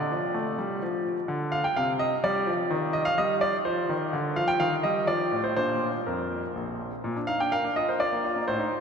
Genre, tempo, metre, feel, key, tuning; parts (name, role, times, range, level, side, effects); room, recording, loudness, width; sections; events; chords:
classical-period piano sonatina; 126 BPM; 3/4; straight; Bb major; A4 = 440 Hz
bright grand piano; solo; 0.0-8.8 s; Bb1 to G5; -24 LUFS; equal
wet cathedral reverb, RT60 5.6 s; -24 LUFS; side -6 dB against mid
0.0-7.0 A section; 7.0-8.8 B section
0.0 Dmadd11; 1.3 Cmadd9; 2.2 G5; 2.7 Ebmaj9; 3.7 F5; 4.1 Dmadd11; 4.6 Ebadd9; 5.1 F; 5.6 Bb